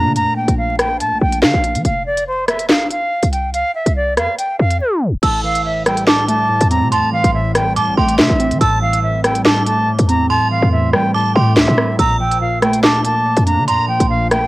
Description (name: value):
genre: hip hop, drill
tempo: 142 BPM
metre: 4/4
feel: half-time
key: A phrygian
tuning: A4 = 437 Hz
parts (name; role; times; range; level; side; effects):
- bright reedy concert flute; melody; 0.0-14.5 s; C5 to Bb5; -18 LUFS; equal; cassette tape
- glassy digital keys; accompaniment; 0.0-1.9, 5.2-14.5 s; A2 to D4; -19 LUFS; equal; chorus, cassette tape
- short 808-style bass; bass; 0.0-14.5 s; F1 to F3; -18 LUFS; equal; none
- drill drum kit; drums; 0.2-14.4 s; crash cymbal, handclaps, hi-hat, rim click, snare drum; -16 LUFS; equal; vintage 12-bit sampler grit, cassette tape
- metallic FM bell; second line; 5.2-14.1 s; C6 to E6; -22 LUFS; right 6 dB; chorus, cassette tape, tape echo
room: light reverb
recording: home recording on cassette, vinyl crackle, tape stop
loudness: -13 LUFS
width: side -18 dB against mid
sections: 0.0-5.2 A section; 5.2-14.5 B section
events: break 0.2-5.2; drums muted 4.8-5.2; tape stop 4.8-5.2; hi-hats muted 10.3-12.0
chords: 0.0 Bbmaj7; 1.8 F5; 5.2 Am7; 12.0 Bbmaj7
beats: | 0.16 0.58 1.00 1.43 | 1.85 2.27 2.69 3.12 | 3.54 3.96 4.38 4.81 | 5.23 5.65 6.07 6.50 | 6.92 7.34 7.76 8.19 | 8.61 9.03 9.45 9.88 | 10.30 10.72 11.14 11.57 | 11.99 12.41 12.83 13.26 | 13.68 14.10